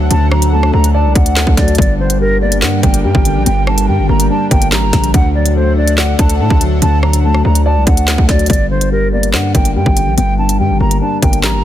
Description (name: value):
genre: hip hop, drill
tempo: 143 BPM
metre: 4/4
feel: half-time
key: G harmonic minor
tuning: A4 = 441 Hz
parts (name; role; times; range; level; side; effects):
- dark concert grand piano; accompaniment; 0.0-11.6 s; G2 to D5; -17 LUFS; left 4 dB; low-pass filter
- airy breathy pad; sustained chords; 0.0-8.5 s; D3 to G5; -23 LUFS; right 2 dB; chorus
- distorted 808-style bass; bass; 0.0-11.6 s; G1 to A2; -14 LUFS; equal; distortion
- mellow hollow silver concert flute; melody; 0.1-11.6 s; Bb4 to Bb5; -19 LUFS; right 1 dB; low-pass filter, ping-pong delay
- drill drum kit; drums; 0.1-11.5 s; handclaps, hi-hat, kick drum, rim click, snare drum; -14 LUFS; equal; none
room: digital ambience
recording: dense, heavily limited modern master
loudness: -10 LUFS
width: side -12 dB against mid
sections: 0.0-8.5 A section; 8.5-11.6 B section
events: none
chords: 0.0 D; 1.8 Gm; 5.1 D; 8.5 Gm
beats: | 0.11 0.53 0.94 1.36 | 1.78 2.20 2.62 3.04 | 3.46 3.88 4.30 4.72 | 5.14 5.56 5.98 6.40 | 6.82 7.24 7.66 8.08 | 8.50 8.92 9.34 9.76 | 10.18 10.60 11.02 11.44